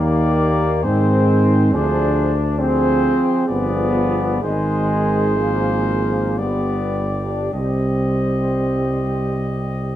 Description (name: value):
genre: classical, hymn-like piece for brass band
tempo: 50-70 BPM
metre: 3/4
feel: rubato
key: C minor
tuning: A4 = 440 Hz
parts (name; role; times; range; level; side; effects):
- clear cornet; melody; 0.0-10.0 s; C5 to Eb5; -27 LUFS; left 6 dB; none
- mellow flugelhorn; second line; 0.0-10.0 s; G4 to Ab4; -25 LUFS; right 6 dB; none
- clear trombone section; accompaniment; 0.0-10.0 s; Ab3 to D4; -21 LUFS; left 1 dB; none
- warm euphonium; accompaniment; 0.0-10.0 s; Eb3 to G3; -25 LUFS; right 1 dB; none
- warm tuba; bass; 0.0-10.0 s; G1 to Ab2; -20 LUFS; equal; none
room: wet recital hall reverb, RT60 1.3 s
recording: dark, warm production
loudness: -16 LUFS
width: side -12 dB against mid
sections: 0.0-10.0 A section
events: none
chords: 0.0 Ebmaj7; 0.9 Ab; 1.7 Dm7b5; 3.5 G7b9; 4.4 Ab; 6.4 G; 7.5 Cm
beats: 0.85 | 1.73 2.60 3.49 | 4.43 5.38 6.40 | 7.54 8.72 9.87